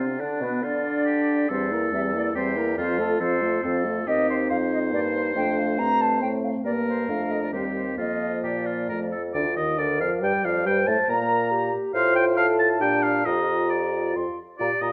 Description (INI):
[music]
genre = quick classical-period movement for wind quintet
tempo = 139 BPM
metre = 3/4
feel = rubato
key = F major, Bb major from 4.1 s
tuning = A4 = 440 Hz
[part]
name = silver concert flute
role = melody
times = 0.0-14.9 s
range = A4 to C6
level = -31 LUFS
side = equal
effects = none
[part]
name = clear oboe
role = second line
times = 0.0-14.9 s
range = D4 to Bb5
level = -30 LUFS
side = equal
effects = none
[part]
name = mellow clarinet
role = accompaniment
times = 0.0-14.9 s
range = A3 to D5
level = -31 LUFS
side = equal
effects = none
[part]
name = warm French horn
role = accompaniment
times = 0.0-14.9 s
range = D3 to G4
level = -31 LUFS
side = equal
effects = none
[part]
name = mellow bassoon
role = bass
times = 0.0-14.9 s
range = D2 to D3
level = -31 LUFS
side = equal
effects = none
[sound]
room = moderate recital hall reverb, RT60 1.4 s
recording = none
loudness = -24 LUFS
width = mono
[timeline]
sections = 0.0-9.3 A section; 9.3-14.9 B section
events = none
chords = 0.2 G7; 1.5 C7/E; 2.8 F; 4.1 Cm7/Eb; 5.4 F; 6.7 Gm; 7.5 Cm/Eb; 8.0 Bb/F; 8.9 F; 9.3 Bb/D; 10.7 C5/G; 11.9 F/A; 12.8 Bb; 13.3 Bb/F; 14.2 F5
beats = | 0.20 0.63 1.06 | 1.50 1.92 2.35 | 2.77 3.20 3.63 | 4.07 4.50 4.92 | 5.35 5.79 6.22 | 6.65 7.09 7.53 | 7.98 8.44 8.90 | 9.35 9.79 10.23 | 10.66 11.09 11.52 | 11.94 12.37 12.81 | 13.25 13.70 14.15 | 14.60